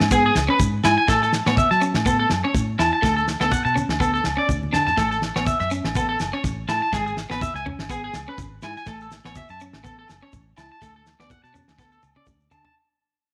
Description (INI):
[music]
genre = highlife guitar band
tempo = 123 BPM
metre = 4/4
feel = swing 55% on 16ths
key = A major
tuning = A4 = 440 Hz
[part]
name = electric guitar at the edge of break-up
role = accompaniment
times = 0.0-12.7 s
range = G#3 to E4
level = -30 LUFS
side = equal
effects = none
[part]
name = fingered electric bass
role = bass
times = 0.0-12.6 s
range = F#1 to F#3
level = -30 LUFS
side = equal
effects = none
[part]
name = damped 70s drum kit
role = drums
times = 0.0-12.8 s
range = kick drum, snare drum, toms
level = -28 LUFS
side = equal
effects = none
[part]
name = agogo bells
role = percussion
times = 0.0-12.7 s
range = none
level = -35 LUFS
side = equal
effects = none
[part]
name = electric guitar at the edge of break-up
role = arpeggios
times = 0.1-12.7 s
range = G#4 to A5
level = -24 LUFS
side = equal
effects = slapback echo
[part]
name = congas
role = percussion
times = 0.1-12.6 s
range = none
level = -34 LUFS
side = equal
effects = none
[part]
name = shekere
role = percussion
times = 0.1-12.6 s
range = none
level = -37 LUFS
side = equal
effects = none
[sound]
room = moderate echo chamber reverb, RT60 1.4 s, small room ambience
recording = none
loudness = -21 LUFS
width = mono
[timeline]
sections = 0.0-12.8 A section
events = fade-out 0.0-12.8; drum fill 4.6-5.0, 11.8-12.8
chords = 0.0 E/G#; 1.1 A; 3.0 D5; 5.0 A; 6.9 E/G#; 8.9 A; 10.8 D5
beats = 0.11 0.60 | 1.09 1.57 2.06 2.55 | 3.04 3.52 4.01 4.50 | 4.98 5.47 5.96 6.44 | 6.93 7.42 7.90 8.39 | 8.87 9.36 9.85 10.33 | 10.82 11.30 11.79 12.28